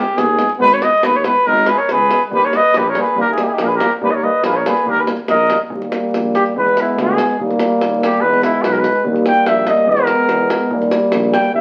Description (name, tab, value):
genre	balkan folk, Balkan brass band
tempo	142 BPM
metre	2/4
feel	straight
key	Eb phrygian dominant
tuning	A4 = 441 Hz
part	mellow trumpet	melody	0.0-5.6 s	G4 to Eb5	-16 LUFS	equal	none
part	warm euphonium	accompaniment	0.0-11.6 s	G3 to Ab3	-25 LUFS	equal	none
part	warm trombone	accompaniment	0.0-11.6 s	Bb3 to Cb4	-25 LUFS	equal	none
part	mellow tuba	bass	0.2-11.6 s	Ab1 to E2	-25 LUFS	equal	none
part	davul	percussion	0.2-11.6 s	none	-26 LUFS	equal	none
part	clear flugelhorn	second line	1.5-11.6 s	Eb4 to G5	-20 LUFS	equal	none
room	wet studio reverb, RT60 0.7 s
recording	very old 78 rpm record, vinyl crackle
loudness	-15 LUFS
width	mono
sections	0.0-5.7 A section; 5.7-11.6 B section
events	speeding up 0.0-11.6; flugelhorn solo 5.7-11.6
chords	0.0 Abm; 2.3 Eb; 6.5 E; 7.4 Eb; 8.2 E; 9.1 Eb; 9.9 E; 10.7 Eb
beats	0.17 | 0.60 1.02 | 1.45 1.88 | 2.31 2.73 | 3.16 3.59 | 4.01 4.44 | 4.86 5.28 | 5.71 6.13 | 6.55 6.97 | 7.39 7.81 | 8.23 8.64 | 9.06 9.47 | 9.89 10.30 | 10.72 11.13 | 11.54